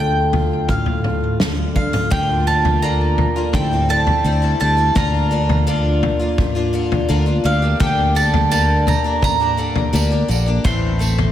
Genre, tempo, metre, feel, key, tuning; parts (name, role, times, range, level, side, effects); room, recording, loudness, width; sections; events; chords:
indie folk with a building arrangement; 84 BPM; 4/4; straight; A4 = 440 Hz
mandolin; melody; 0.0-11.3 s; F5 to C6; -20 LUFS; right 2 dB; ping-pong delay
fingerpicked steel-string acoustic guitar; accompaniment; 0.0-5.0 s; D2 to F4; -26 LUFS; equal
fingered electric bass; bass; 0.0-11.3 s; A1 to D2; -19 LUFS; equal
natural country drum kit; drums; 0.3-11.3 s; kick drum, snare drum, toms; -21 LUFS; left 1 dB
picked steel-string acoustic guitar; accompaniment; 2.1-11.3 s; A2 to G4; -22 LUFS; left 3 dB; lush chorus
tambourine; percussion; 8.2-11.2 s; -32 LUFS; right 8 dB
moderate plate reverb, RT60 2.5 s; dreamy mix soaked in reverb; -15 LUFS; side -11 dB against mid
0.0-2.1 A section; 2.1-11.3 B section
0.0 Dm; 2.1 Bb/D; 3.5 C/D; 5.0 Bb/D; 7.5 Gm/D; 10.6 Am